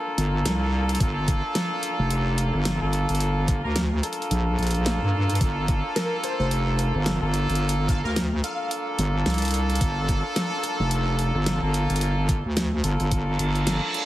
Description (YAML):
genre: glitch hop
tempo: 109 BPM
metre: 4/4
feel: swing 58% on 16ths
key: G minor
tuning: A4 = 440 Hz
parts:
  - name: clear horn section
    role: stabs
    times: 0.0-14.1 s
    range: Bb3 to Bb4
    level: -28 LUFS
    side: equal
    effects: sidechain pumping, dub echo
  - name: wobble bass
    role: bass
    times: 0.2-13.8 s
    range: F1 to G2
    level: -24 LUFS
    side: equal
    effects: chorus, tube saturation
  - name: dubstep drum kit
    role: drums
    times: 0.2-14.1 s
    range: hi-hat, rim click, snare drum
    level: -29 LUFS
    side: equal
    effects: none
  - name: electronic kick drum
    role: drums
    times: 1.0-13.2 s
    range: none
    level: -23 LUFS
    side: equal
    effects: none
  - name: plucky unison lead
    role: melody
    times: 6.0-8.9 s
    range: Bb4 to F5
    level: -34 LUFS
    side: left 1 dB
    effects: ensemble chorus, dub echo
  - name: reverse cymbal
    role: sound effects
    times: 13.3-14.1 s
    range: none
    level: -29 LUFS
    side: right 4 dB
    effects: none
room: light reverb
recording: heavily compressed radio sound, multiband compression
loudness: -22 LUFS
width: side -15 dB against mid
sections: 0.0-14.1 A section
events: reverse cymbal 13.3-14.1; kick drops out 13.7-14.1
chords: 0.0 Gm9